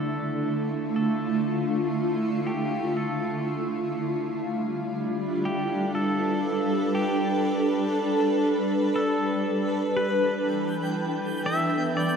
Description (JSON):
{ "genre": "ambient", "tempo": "60 BPM", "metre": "3/4", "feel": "straight", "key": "unclear", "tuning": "A4 = 440 Hz", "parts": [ { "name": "pedal steel guitar", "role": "melody", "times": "0.0-12.2 s", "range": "G4 to E5", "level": "-32 LUFS", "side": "equal", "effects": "shimmer reverb, analog delay" }, { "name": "granular cloud pad", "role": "sustained chords", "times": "0.0-12.2 s", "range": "D3 to E5", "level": "-24 LUFS", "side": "equal", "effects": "built-in reverb, lush chorus, shimmer reverb" }, { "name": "twinkling granular texture", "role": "texture", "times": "10.5-12.2 s", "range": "G5", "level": "-34 LUFS", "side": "right 3 dB", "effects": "built-in reverb, shimmer reverb" }, { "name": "soft round pluck", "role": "arpeggios", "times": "10.0-11.7 s", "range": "G4", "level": "-40 LUFS", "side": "left 4 dB", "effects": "none" } ], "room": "wet lush hall reverb, RT60 3.0 s", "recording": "dreamy mix soaked in reverb", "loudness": "-24 LUFS", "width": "side -6 dB against mid", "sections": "0.0-12.2 A section", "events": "fade-in on pedal steel guitar 0.0-12.2", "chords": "0.0 Dm; 4.0 G7; 10.0 Em7" }